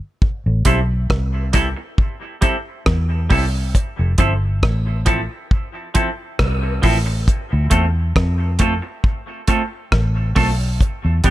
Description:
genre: dub reggae.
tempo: 68 BPM.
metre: 4/4.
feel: straight.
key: A minor.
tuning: A4 = 441 Hz.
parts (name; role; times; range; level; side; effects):
damped 70s drum kit; drums; 0.2-11.3 s; hi-hat, kick drum, rim click; -17 LUFS; equal; none.
vintage muted fingered electric bass; bass; 0.5-11.3 s; F1 to F2; -18 LUFS; equal; none.
semi-hollow electric guitar; accompaniment; 0.7-11.3 s; F3 to A4; -22 LUFS; right 2 dB; wide subtle chorus, dub echo.
room: small room ambience.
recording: none.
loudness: -16 LUFS.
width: side -15 dB against mid.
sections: 0.2-11.3 A section.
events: break 0.0.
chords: 0.2 Am7; 3.8 Fmaj7; 7.3 Dm7 (rootless).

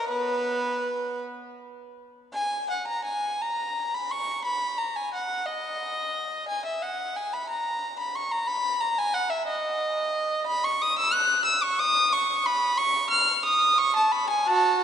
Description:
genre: classical, baroque-style suite movement for unaccompanied violin.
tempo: 52-61 BPM (dotted quarters).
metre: 6/8.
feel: rubato.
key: B major.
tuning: A4 = 438 Hz.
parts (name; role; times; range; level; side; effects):
warm violin; solo; 0.0-14.8 s; B3 to F#6; -23 LUFS; equal; none.
room: wet church reverb, RT60 3.5 s.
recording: nothing above 10.7 kHz.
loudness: -23 LUFS.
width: side -9 dB against mid.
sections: 0.0-2.4 A section; 2.4-14.8 B section.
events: none.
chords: none.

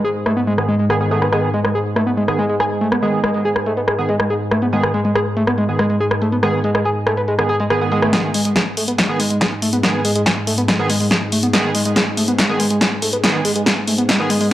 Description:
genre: driving peak-time techno.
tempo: 141 BPM.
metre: 4/4.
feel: straight.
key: G# phrygian.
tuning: A4 = 439 Hz.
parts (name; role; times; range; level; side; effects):
overdriven synth lead; riff; 0.0-14.5 s; G#3 to G#4; -19 LUFS; equal; sidechain pumping, tape echo.
analog drone; drone; 0.0-14.5 s; G#2; -24 LUFS; equal; chorus, sidechain pumping.
punchy analog drum machine; drums; 0.0-14.5 s; hi-hat, rim click, snare drum; -19 LUFS; equal; low-pass filter on snare, sidechain pumping on hats, low-pass filter on hats, sidechain pumping on cymbals, low-pass filter on cymbals, low-pass filter on room.
sync-sweep polysynth; stabs; 0.6-14.3 s; D#3 to G#4; -23 LUFS; right 2 dB; chorus, sidechain pumping, tape echo.
electronic kick drum; drums; 8.1-14.2 s; none; -24 LUFS; equal; high-pass filter on kick, high-pass filter on room.
room: moderate digital room reverb, RT60 1.2 s, digital ambience.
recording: dry, gritty hardware recording, cassette tape, high-pass filter.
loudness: -15 LUFS.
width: side -14 dB against mid.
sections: 0.0-8.1 A section; 8.1-14.5 B section.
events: build-up 8.1-14.5; drum fill 8.1-14.5.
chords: 0.0 G#m.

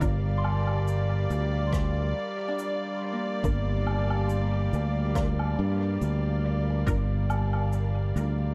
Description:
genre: ambient dub.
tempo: 70 BPM.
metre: 4/4.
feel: swing 54% on 16ths.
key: unclear.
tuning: A4 = 439 Hz.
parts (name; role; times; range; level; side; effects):
dark chamber string section; sustained chords; 0.0-8.5 s; G3 to F5; -34 LUFS; equal; none.
filtered dub chord stab; stabs; 0.0-7.1 s; D4 to Bb4; -43 LUFS; equal; none.
fingered electric bass; bass; 0.0-8.5 s; G1 to G2; -28 LUFS; equal; tube saturation.
cabasa, woodblock and rim click; drums; 0.0-8.3 s; none; -40 LUFS; equal; dub echo.
electronic kick drum; drums; 0.0-7.1 s; none; -32 LUFS; equal; overdrive.
Celtic harp; arpeggios; 0.4-7.2 s; Bb3 to C6; -41 LUFS; equal; dub echo.
room: studio ambience.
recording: dark, warm production, lossy compression artefacts.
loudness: -27 LUFS.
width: mono.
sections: 0.0-8.5 A section.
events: none.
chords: 0.0 Bb/G.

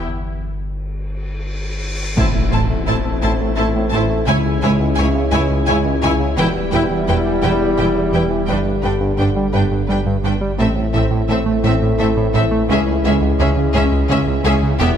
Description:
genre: cinematic, hybrid orchestral and electronic film score.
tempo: 57 BPM (dotted quarters).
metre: 6/8.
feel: straight.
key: unclear.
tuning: A4 = 440 Hz.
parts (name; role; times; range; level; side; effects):
clear symphonic violin section; second line; 0.0-14.9 s; G4 to C#5; -28 LUFS; left 3 dB; none.
rich symphonic viola section; accompaniment; 0.0-14.9 s; B3 to E4; -25 LUFS; equal; none.
mellow French horn section; sustained chords; 0.0-15.0 s; B3 to G4; -24 LUFS; left 6 dB; none.
rich symphonic cello section; bass; 0.0-14.9 s; C#2 to A2; -24 LUFS; right 2 dB; none.
warm sub bass; bass; 0.0-15.0 s; E1 to C#2; -24 LUFS; left 1 dB; none.
cymbal swell and impact; sound effects; 1.4-4.3 s; none; -25 LUFS; left 1 dB; none.
clear symphonic violin section; melody; 2.2-14.9 s; E5 to A5; -26 LUFS; left 4 dB; none.
clear trombone section; sustained chords; 2.2-15.0 s; D3 to A3; -24 LUFS; right 3 dB; none.
smooth synth bass; riff; 2.2-14.9 s; C#2 to A3; -21 LUFS; right 2 dB; none.
rich symphonic double bass section; bass; 2.2-14.9 s; E1 to C#2; -24 LUFS; right 2 dB; none.
room: moderate concert hall reverb, RT60 2.1 s.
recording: none.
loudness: -15 LUFS.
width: side -8 dB against mid.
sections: 0.0-2.2 A section; 2.2-15.0 B section.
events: break 0.1-2.2; cymbal swell 1.4-2.2; impact 2.2-4.3.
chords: 0.1 N.C.; 2.2 Am; 4.3 C#m; 6.4 Em; 8.5 G; 10.6 Am; 12.7 C#m.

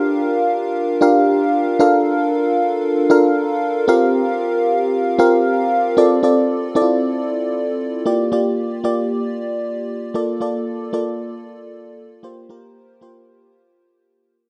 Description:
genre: pop.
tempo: 115 BPM.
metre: 4/4.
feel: swing 55% on 16ths.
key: unclear.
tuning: A4 = 441 Hz.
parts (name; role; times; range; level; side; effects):
FM electric piano with soft pad layer; solo; 0.0-14.3 s; Bb3 to F5; -18 LUFS; equal; chorus.
room: moderate plate reverb, RT60 3.6 s.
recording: none.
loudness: -18 LUFS.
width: mono.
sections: 0.0-6.0 A section; 6.0-14.3 B section.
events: fade-out 6.0-14.3.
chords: 0.0 Gm7; 1.8 Bbmaj7; 3.9 C7sus4; 6.0 Dm7; 8.1 Gm7; 10.1 Bbmaj7; 12.2 C7sus4.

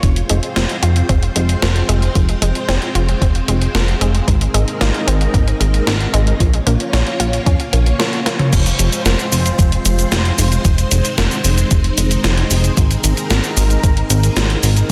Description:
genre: synthwave.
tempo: 113 BPM.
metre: 4/4.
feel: straight.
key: F minor.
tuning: A4 = 440 Hz.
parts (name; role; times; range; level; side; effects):
string machine, full ensemble; sustained chords; 0.0-14.9 s; Ab3 to Db5; -24 LUFS; equal; ensemble chorus, sidechain pumping.
analog pluck; arpeggios; 0.0-8.4 s; Eb3 to F4; -27 LUFS; equal; chorus, delay.
chorused synth bass; bass; 0.0-14.9 s; F1 to F2; -18 LUFS; equal; tube saturation.
electronic kick drum; drums; 0.0-14.9 s; none; -18 LUFS; equal; none.
gated 80s digital drum machine; drums; 0.0-14.9 s; cabasa, crash cymbal, hi-hat, snare drum, toms; -22 LUFS; equal; gated reverb, gated reverb snare.
room: light reverb.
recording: dense, heavily limited modern master.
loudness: -15 LUFS.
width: mono.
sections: 0.0-8.5 A section; 8.5-14.9 B section.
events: drum fill 8.3.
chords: 0.0 Fm; 4.3 Abadd9; 6.4 Bbm; 8.5 Fm; 12.8 Abadd9.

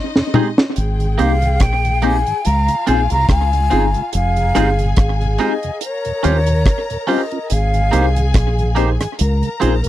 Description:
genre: lovers rock reggae.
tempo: 71 BPM.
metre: 4/4.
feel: swing 56% on 16ths.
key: Ab major.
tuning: A4 = 440 Hz.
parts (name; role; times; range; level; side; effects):
warm studio string section; second line; 0.0-9.9 s; Eb4 to Bb5; -26 LUFS; left 3 dB; none.
mellow tonewheel organ; accompaniment; 0.2-9.9 s; Eb2 to G4; -24 LUFS; right 4 dB; slow rotary speaker.
deep reggae drum kit; drums; 0.2-9.9 s; hi-hat, kick drum, rim click, snare drum, toms; -17 LUFS; equal; slapback echo.
mellow tine electric piano; accompaniment; 0.3-9.9 s; Ab3 to C5; -20 LUFS; left 3 dB; medium stereo tremolo.
twangy electric guitar; stabs; 0.3-9.7 s; Ab3 to C5; -20 LUFS; right 5 dB; none.
deep dub fingered electric bass; bass; 0.8-9.9 s; F1 to Eb2; -16 LUFS; equal; none.
breathy concert flute; melody; 1.2-8.4 s; Db5 to Bb5; -21 LUFS; left 1 dB; tape echo.
room: little or no reverb.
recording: dry, close 1970s-style studio recording.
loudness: -14 LUFS.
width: side -14 dB against mid.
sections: 0.8-9.9 A section.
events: drum fill 0.0-0.8; flute solo 0.8-9.9.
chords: 0.0 Fm7; 0.8 Abmaj9; 2.5 Dbmaj7; 4.1 Fm7; 5.8 Eb13; 7.5 Abmaj9; 9.2 Dbmaj7.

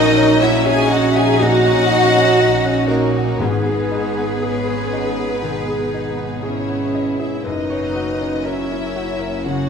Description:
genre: cinematic.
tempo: 60 BPM.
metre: 4/4.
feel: rubato.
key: G# minor.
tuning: A4 = 440 Hz.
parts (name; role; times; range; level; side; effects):
warm studio violin section; melody; 0.0-9.7 s; A#4 to G#5; -24 LUFS; left 3 dB; none.
mellow hollow silver concert flute; second line; 0.0-9.7 s; F#4 to E5; -23 LUFS; equal; none.
warm studio violin section; second line; 0.0-9.7 s; A#3 to E4; -24 LUFS; equal; none.
bright baby grand piano; accompaniment; 0.0-9.7 s; A#1 to D#5; -24 LUFS; equal; none.
warm studio viola section; accompaniment; 0.0-9.7 s; A#3 to G#4; -23 LUFS; equal; none.
mellow French horn section; sustained chords; 0.0-9.7 s; A#3 to G#4; -23 LUFS; left 2 dB; none.
concert harp; arpeggios; 0.0-9.7 s; F#2 to A#5; -28 LUFS; left 6 dB; none.
warm studio cello section; bass; 0.0-9.7 s; C#4 to G#4; -28 LUFS; right 5 dB; none.
warm studio double bass section; bass; 0.0-9.7 s; F#1 to A#1; -25 LUFS; right 5 dB; none.
timpani; percussion; 3.4-4.9 s; G#2; -30 LUFS; equal; none.
room: wet scoring stage reverb, RT60 1.8 s.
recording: minimal, uncompressed stereo recording.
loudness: -15 LUFS.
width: side -6 dB against mid.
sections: 0.0-9.7 A section.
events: none.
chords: 0.0 D#m7/A#; 3.4 G#m; 7.5 F#.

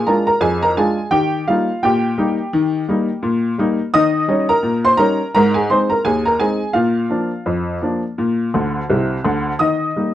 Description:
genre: ragtime piano.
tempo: 85 BPM.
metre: 2/4.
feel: swing 58% on 16ths.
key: Eb major.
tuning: A4 = 440 Hz.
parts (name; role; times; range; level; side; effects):
clear upright piano; solo; 0.0-10.1 s; C2 to Eb6; -15 LUFS; equal; none.
room: moderate studio reverb, RT60 0.7 s.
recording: worn, warbling old tape, cassette tape, warbly pitch drift.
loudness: -15 LUFS.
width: side -12 dB against mid.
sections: 0.0-10.1 A section.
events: upright piano fill 8.5-9.6.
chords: 0.0 Bb7; 1.1 Eb; 3.9 Eb7; 5.3 Ab; 6.8 Bb; 9.6 Eb.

